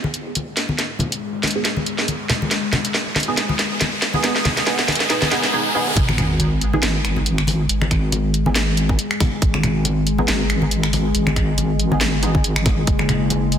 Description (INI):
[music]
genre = deep dubstep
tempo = 139 BPM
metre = 4/4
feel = swing 56% on 16ths, half-time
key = G# minor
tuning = A4 = 439 Hz
[part]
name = deep dark ambient pad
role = sustained chords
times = 0.5-13.6 s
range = G#3 to G#4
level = -26 LUFS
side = left 5 dB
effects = chorus, built-in reverb, vintage 12-bit sampler grit
[part]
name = deep soft wobble bass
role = bass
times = 0.0-13.6 s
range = F#1 to G#1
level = -21 LUFS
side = right 1 dB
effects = chorus, high-pass filter
[part]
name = congas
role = percussion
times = 0.0-13.4 s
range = none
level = -26 LUFS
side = left 2 dB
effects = dub echo
[part]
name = riser and sub drop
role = sound effects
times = 1.4-7.7 s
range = none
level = -28 LUFS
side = right 1 dB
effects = none
[part]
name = garage drum kit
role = drums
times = 0.1-13.6 s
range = finger snaps, hi-hat, snare drum, toms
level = -21 LUFS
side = equal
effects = high-pass filter on hats, high-pass filter on snare, high-pass filter on toms, high-pass filter on room
[part]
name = filtered dub chord stab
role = stabs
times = 1.6-12.4 s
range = B3 to G#4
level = -25 LUFS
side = right 3 dB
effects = phaser, ensemble chorus, dub echo
[part]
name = electronic kick drum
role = drums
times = 6.0-13.0 s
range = none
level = -21 LUFS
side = equal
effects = none
[sound]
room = moderate lush hall reverb, RT60 2.1 s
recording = dense, heavily limited modern master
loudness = -17 LUFS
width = side -9 dB against mid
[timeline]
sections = 0.0-6.0 A section; 6.0-13.6 B section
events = build-up 0.0-6.0; drum fill 0.0-5.5, 5.8; riser 1.4-6.0; drop 6.0-13.6; impact 6.0-7.7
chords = 0.0 G#m; 12.9 F#sus2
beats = 0.36 | 0.79 1.22 1.65 2.08 | 2.51 2.95 3.38 3.81 | 4.24 4.67 5.10 5.54 | 5.97 6.40 6.83 7.26 | 7.69 8.12 8.56 8.99 | 9.42 9.85 10.28 10.71 | 11.15 11.58 12.01 12.44 | 12.87 13.30